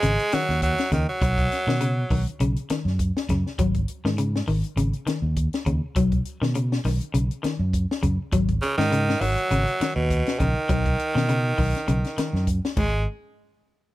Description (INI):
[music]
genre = afrobeat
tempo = 101 BPM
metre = 4/4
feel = swing 55% on 16ths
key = unclear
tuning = A4 = 441 Hz
[part]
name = raspy tenor saxophone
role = melody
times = 0.0-2.2, 8.6-13.0 s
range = B2 to G#3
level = -25 LUFS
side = right 2 dB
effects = none
[part]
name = electric guitar at the edge of break-up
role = arpeggios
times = 0.0-12.9 s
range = G#2 to F#3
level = -27 LUFS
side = left 3 dB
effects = none
[part]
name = fingered electric bass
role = bass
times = 0.0-13.0 s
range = G#1 to B2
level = -24 LUFS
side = equal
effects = none
[part]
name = compact cocktail drum kit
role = drums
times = 0.0-12.9 s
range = crash cymbal, hi-hat, kick drum, snare drum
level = -28 LUFS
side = left 1 dB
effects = none
[sound]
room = little or no reverb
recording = dry, close 1970s-style studio recording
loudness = -21 LUFS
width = side -16 dB against mid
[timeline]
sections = 0.0-13.1 A section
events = none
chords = 0.0 G#5; 1.2 B; 3.6 G#5; 6.0 B; 8.3 G#5; 10.7 B; 12.8 N.C.